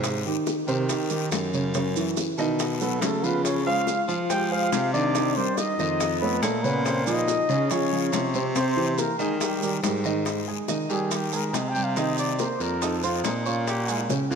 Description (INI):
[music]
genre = Afro-Cuban jazz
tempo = 141 BPM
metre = 4/4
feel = straight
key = Ab major from 10.3 s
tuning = A4 = 440 Hz
[part]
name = warm baby grand piano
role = accompaniment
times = 0.0-14.4 s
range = C3 to Eb6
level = -27 LUFS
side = right 2 dB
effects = none
[part]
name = warm baritone saxophone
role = bass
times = 0.0-14.4 s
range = F2 to F3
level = -28 LUFS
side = equal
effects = none
[part]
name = bongos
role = percussion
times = 0.0-14.3 s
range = none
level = -34 LUFS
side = left 8 dB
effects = none
[part]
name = guiro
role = percussion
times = 0.0-14.4 s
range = none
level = -38 LUFS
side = left 12 dB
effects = none
[part]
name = maracas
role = percussion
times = 0.0-14.4 s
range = none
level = -36 LUFS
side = right 13 dB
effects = none
[part]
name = dark trumpet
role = melody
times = 2.8-14.1 s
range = Eb4 to G5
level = -28 LUFS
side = right 1 dB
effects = tape echo
[part]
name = breathy trombone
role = second line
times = 2.8-9.8 s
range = G3 to G4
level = -31 LUFS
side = left 6 dB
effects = none
[sound]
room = moderate lush hall reverb, RT60 1.9 s, small room ambience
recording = dreamy mix soaked in reverb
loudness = -22 LUFS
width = side -6 dB against mid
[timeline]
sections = 0.0-10.3 A section; 10.3-14.4 B section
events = trumpet solo 10.3-14.4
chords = 0.0 Abmaj7; 1.7 Gb5; 2.6 B9; 3.4 Dbmaj7; 5.1 Cm7; 6.0 Faug7; 6.9 Bbm9; 8.6 C; 9.4 Eb; 10.3 Abmaj7; 12.0 Cm7; 12.8 F5; 13.7 Bbm7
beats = | 0.04 0.46 0.89 1.31 | 1.74 2.17 2.59 3.02 | 3.44 3.87 4.30 4.72 | 5.15 5.57 6.00 6.43 | 6.85 7.28 7.70 8.13 | 8.56 8.98 9.41 9.83 | 10.26 10.69 11.11 11.54 | 11.97 12.39 12.82 13.24 | 13.67 14.10